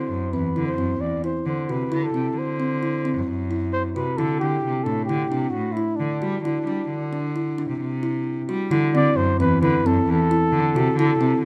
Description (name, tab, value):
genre	contemporary instrumental, chamber music in an uneven meter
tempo	132 BPM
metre	5/4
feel	straight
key	D mixolydian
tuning	A4 = 439 Hz
part	breathy flugelhorn	melody	0.0-11.4 s	D4 to D5	-28 LUFS	equal	none
part	kalimba	arpeggios	0.0-11.4 s	C4 to F#4	-27 LUFS	equal	none
part	rich cello	bass	0.0-11.4 s	E2 to G3	-27 LUFS	equal	none
room	light reverb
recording	close, detailed microphones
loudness	-23 LUFS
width	mono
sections	0.0-8.7 A section; 8.7-11.4 B section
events	none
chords	0.0 D13/E; 4.2 Dsus4; 8.7 Am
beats	0.10 0.56 1.01 1.46 | 1.92 2.37 2.82 3.28 3.73 | 4.18 4.64 5.09 5.54 6.00 | 6.45 6.90 7.36 7.81 8.26 | 8.71 9.17 9.62 10.07 10.52 | 10.97 11.43